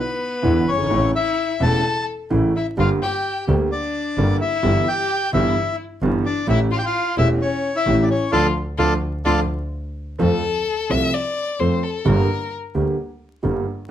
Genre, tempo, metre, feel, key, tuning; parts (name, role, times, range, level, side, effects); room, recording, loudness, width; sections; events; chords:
tango; 129 BPM; 4/4; rubato; D harmonic minor, F major from 10.2 s; A4 = 440 Hz
bandoneon; melody; 0.0-9.4 s; A4 to A5; -22 LUFS; left 2 dB
warm violin; second line; 0.0-12.5 s; B3 to E5; -25 LUFS; left 5 dB
warm concert grand piano; accompaniment; 0.4-13.6 s; E1 to A4; -21 LUFS; right 2 dB
clear double bass; bass; 0.4-13.6 s; E1 to F2; -23 LUFS; equal
moderate club reverb, RT60 0.7 s; vinyl crackle; -18 LUFS; side -10 dB against mid
0.0-10.2 A section; 10.2-13.9 B section
band accent 8.3-10.2; violin solo 10.2-13.9
0.0 E7; 0.9 A; 2.8 Gm; 4.6 Em/G; 6.5 A7; 8.3 Dm; 10.2 F; 12.1 Gm